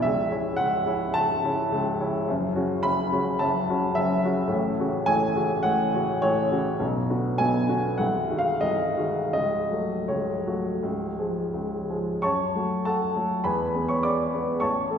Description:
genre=classical, romantic character piece for solo piano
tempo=79-110 BPM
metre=4/4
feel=rubato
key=F# minor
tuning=A4 = 439 Hz
part: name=warm upright piano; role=solo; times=0.0-15.0 s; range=B#0 to D6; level=-23 LUFS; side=equal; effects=none
room=wet concert hall reverb, RT60 1.8 s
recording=heard from further back in the room, nothing above 10.9 kHz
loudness=-23 LUFS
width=side -7 dB against mid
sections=0.0-12.2 A section; 12.2-15.0 B section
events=none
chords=0.0 A/C#; 2.3 F#m; 4.5 F#m/A; 6.8 Bm; 8.0 G#7/B#; 9.3 F#m/C#; 10.8 C#; 12.2 F#m; 13.4 E

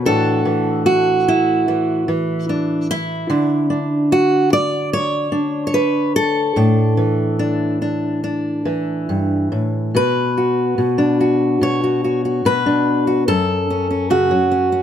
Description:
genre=folk, solo fingerstyle acoustic guitar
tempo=73 BPM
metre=4/4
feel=rubato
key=unclear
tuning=A4 = 439 Hz
part: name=fingerpicked steel-string acoustic guitar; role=solo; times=0.0-14.8 s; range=F#2 to D5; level=-15 LUFS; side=equal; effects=none
room=light reverb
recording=close, detailed microphones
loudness=-15 LUFS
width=side -9 dB against mid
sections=0.0-9.9 A section; 9.9-14.8 B section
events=none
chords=0.1 Asus4; 3.3 N.C.; 6.6 Asus4; 9.9 Bmadd9; 13.3 F#m

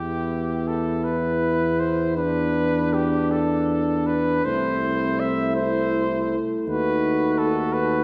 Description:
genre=classical, hymn-like piece for brass band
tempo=54 BPM (dotted quarters)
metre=6/8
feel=rubato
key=unclear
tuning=A4 = 440 Hz
part: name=clear cornet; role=melody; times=0.0-8.0 s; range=G4 to E5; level=-28 LUFS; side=equal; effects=none
part: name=warm flugelhorn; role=second line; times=0.0-8.0 s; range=D4 to F#4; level=-32 LUFS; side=equal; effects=none
part: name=mellow trombone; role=accompaniment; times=0.0-8.0 s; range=A3 to B3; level=-32 LUFS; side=equal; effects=none
part: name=mellow tuba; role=bass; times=0.0-8.0 s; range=C2 to E2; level=-30 LUFS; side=equal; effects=none
part: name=mellow euphonium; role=accompaniment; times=1.0-8.0 s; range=C4 to E4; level=-28 LUFS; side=equal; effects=none
room=wet concert hall reverb, RT60 2.3 s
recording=none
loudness=-23 LUFS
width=mono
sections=0.0-8.0 A section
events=none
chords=0.0 Em; 2.2 Bm/E; 4.5 Am/C; 6.7 B7/D#

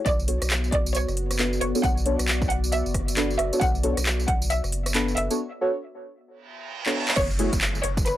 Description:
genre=UK garage, two-step garage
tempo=135 BPM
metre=4/4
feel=swing 62% on 16ths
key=unclear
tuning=A4 = 439 Hz
part: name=deep mellow chord stab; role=stabs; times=0.0-7.5 s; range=A3 to C#5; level=-27 LUFS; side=equal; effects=chorus, phaser, analog delay
part: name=warbly tape-like pad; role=texture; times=0.0-8.2 s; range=B3 to D5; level=-34 LUFS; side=left 3 dB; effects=chorus, built-in reverb, phaser, sidechain pumping
part: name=bright chamber violin section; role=melody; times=0.1-8.2 s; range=B4 to F#5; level=-28 LUFS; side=equal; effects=analog delay
part: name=saturated sub bass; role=bass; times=0.1-8.2 s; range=F#1 to B1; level=-27 LUFS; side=equal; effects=none
part: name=electronic kick drum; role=drums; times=0.1-4.4, 7.2-8.0 s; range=none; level=-27 LUFS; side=equal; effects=overdrive
part: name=house drum kit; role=drums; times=0.1-8.2 s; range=crash cymbal, handclaps, hi-hat, rim click, tambourine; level=-28 LUFS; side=equal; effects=overdrive
part: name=reverse cymbal and downlifter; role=sound effects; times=6.5-8.2 s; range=none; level=-32 LUFS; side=right 3 dB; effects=none
room=light reverb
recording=dry, gritty hardware recording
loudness=-22 LUFS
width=side -13 dB against mid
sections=0.0-7.2 A section; 7.2-8.2 B section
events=fade-in on ambient pad 0.0-7.2; filter sweep on synth stab 0.0-7.2; break 5.4-7.2; reverse cymbal 6.5-7.2; drum fill 6.8-7.2; band accent 7.1; drop 7.2-8.2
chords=0.1 Bm7; 7.2 F#m7

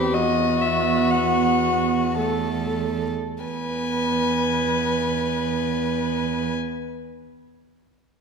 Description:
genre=classical, slow romantic movement for string quartet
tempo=free time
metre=none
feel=none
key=unclear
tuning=A4 = 437 Hz
part: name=warm violin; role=melody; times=0.0-6.5 s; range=B4 to G#5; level=-26 LUFS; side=left 9 dB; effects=none
part: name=warm violin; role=second line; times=0.0-6.5 s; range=F#4 to B4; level=-26 LUFS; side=equal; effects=none
part: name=dark viola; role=accompaniment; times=0.0-6.5 s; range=A3 to C4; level=-27 LUFS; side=right 4 dB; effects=none
part: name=warm cello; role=bass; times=0.0-6.5 s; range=E2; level=-27 LUFS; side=right 7 dB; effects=none
room=moderate concert hall reverb, RT60 1.8 s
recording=minimal, uncompressed stereo recording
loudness=-20 LUFS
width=side -5 dB against mid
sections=0.0-3.4 A section; 3.4-8.2 B section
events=slowing down 0.0-3.4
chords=0.1 B5/E; 3.4 E

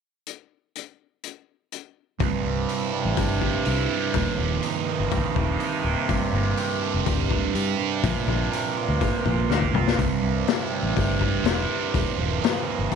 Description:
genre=psychedelic rock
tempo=123 BPM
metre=4/4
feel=straight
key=unclear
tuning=A4 = 440 Hz
part: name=raw garage drum kit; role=drums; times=0.3-13.0 s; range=hi-hat, kick drum, snare drum, toms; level=-27 LUFS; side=left 7 dB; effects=none
part: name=thick fuzz guitar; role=riff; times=2.2-13.0 s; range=C2 to Bb4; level=-26 LUFS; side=right 13 dB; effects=distortion, phaser
part: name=fingered electric bass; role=bass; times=2.2-13.0 s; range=C1 to G2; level=-26 LUFS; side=left 1 dB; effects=none
part: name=tanpura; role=drone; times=2.2-13.0 s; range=C2 to C3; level=-29 LUFS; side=left 1 dB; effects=none
room=moderate spring reverb, RT60 1.4 s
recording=1960s-style stereo with parts hard left and right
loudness=-21 LUFS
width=side -6 dB against mid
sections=0.3-2.2 A section; 2.2-13.0 B section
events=drum fill 9.5-10.0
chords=0.3 N.C.; 2.2 C; 4.1 Ebadd9; 6.1 Gm; 8.0 Bbadd9; 10.0 C; 11.9 Ebadd9

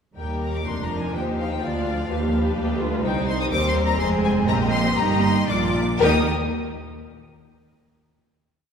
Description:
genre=quick classical-period movement for string orchestra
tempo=113-128 BPM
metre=3/4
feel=rubato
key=Eb major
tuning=A4 = 440 Hz
part: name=rich symphonic violin section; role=melody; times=0.2-6.3 s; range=F5 to Eb6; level=-28 LUFS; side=left 4 dB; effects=none
part: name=rich symphonic violin section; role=second line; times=0.2-6.3 s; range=D4 to Eb5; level=-27 LUFS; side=left 4 dB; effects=none
part: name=rich symphonic viola section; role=accompaniment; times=0.2-6.3 s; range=F3 to G4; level=-26 LUFS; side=right 1 dB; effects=none
part: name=rich symphonic cello section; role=bass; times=0.2-6.3 s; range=C2 to Eb3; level=-27 LUFS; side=right 2 dB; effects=none
part: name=rich symphonic double bass section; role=bass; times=0.2-6.3 s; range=F1 to Eb2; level=-26 LUFS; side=right 2 dB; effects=none
room=wet scoring stage reverb, RT60 2.1 s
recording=heard from further back in the room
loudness=-20 LUFS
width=side -7 dB against mid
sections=0.2-6.0 A section; 6.0-7.5 final chord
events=slowing down 2.3-6.0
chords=0.2 Eb; 1.6 G7/D; 3.0 Cm; 4.0 Fm; 4.5 Eb/Bb; 5.5 Bb; 6.0 Eb5

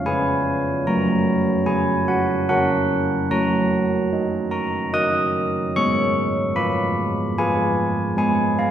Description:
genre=classical, tune for church bells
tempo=74 BPM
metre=3/4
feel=straight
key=F# major, Eb minor from 3.3 s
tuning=A4 = 440 Hz
part: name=carillon bells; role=solo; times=0.0-8.7 s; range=E#3 to Eb6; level=-18 LUFS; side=right 1 dB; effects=none
room=wet scoring stage reverb, RT60 1.6 s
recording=heard from further back in the room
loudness=-18 LUFS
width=side -10 dB against mid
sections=0.0-8.7 A section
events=none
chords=0.0 C#7/E#; 0.9 F#; 3.3 Ebm/Gb; 5.7 Fdim/Ab; 8.2 Bb7(no3)/Ab (rootless)

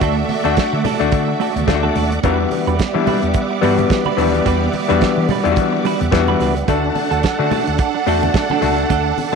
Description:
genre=disco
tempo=108 BPM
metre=4/4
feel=swing 56% on 16ths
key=E minor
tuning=A4 = 440 Hz
part: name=rich studio string section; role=second line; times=0.0-9.4 s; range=A3 to F#5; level=-22 LUFS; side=right 11 dB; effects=none
part: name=clean electric guitar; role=accompaniment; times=0.0-9.4 s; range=G3 to B4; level=-24 LUFS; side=right 13 dB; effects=none
part: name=overdriven clav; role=accompaniment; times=0.0-9.4 s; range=E3 to F#4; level=-19 LUFS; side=left 11 dB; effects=none
part: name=bright tonewheel organ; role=sustained chords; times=0.0-9.4 s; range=G3 to D6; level=-25 LUFS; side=equal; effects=chorus vibrato, slow rotary speaker
part: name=hollow-body short-scale fingered electric bass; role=bass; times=0.0-9.4 s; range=C#2 to E3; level=-22 LUFS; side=equal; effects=none
part: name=damped 70s drum kit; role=drums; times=0.0-9.3 s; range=hi-hat, kick drum, snare drum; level=-22 LUFS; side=right 3 dB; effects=none
part: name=congas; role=percussion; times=0.0-9.3 s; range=none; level=-28 LUFS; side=left 8 dB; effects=none
room=light reverb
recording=1960s-style stereo with parts hard left and right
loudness=-14 LUFS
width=side -5 dB against mid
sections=0.0-9.4 A section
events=none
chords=0.0 D; 2.2 Em9; 6.7 D

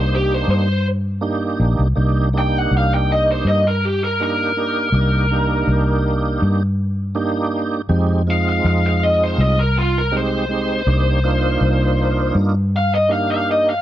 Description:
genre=straight-eighth soul blues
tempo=81 BPM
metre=4/4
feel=straight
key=C minor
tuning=A4 = 440 Hz
part: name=biting lead guitar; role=melody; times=0.0-13.8 s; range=F4 to G5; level=-20 LUFS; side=left 1 dB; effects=overdrive
part: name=tonewheel organ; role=accompaniment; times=0.0-13.7 s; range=Ab3 to G4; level=-22 LUFS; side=right 4 dB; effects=slow rotary speaker, overdrive, chorus vibrato
part: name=vintage muted fingered electric bass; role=bass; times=0.0-13.8 s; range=Bb1 to G2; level=-18 LUFS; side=equal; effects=none
room=little or no reverb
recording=dry, close 1970s-style studio recording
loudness=-15 LUFS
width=side -12 dB against mid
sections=0.0-2.0 A section; 2.0-13.8 B section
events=lead electric guitar solo 2.0-13.8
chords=0.0 Cm7; 7.9 Fm7; 10.9 Cm7

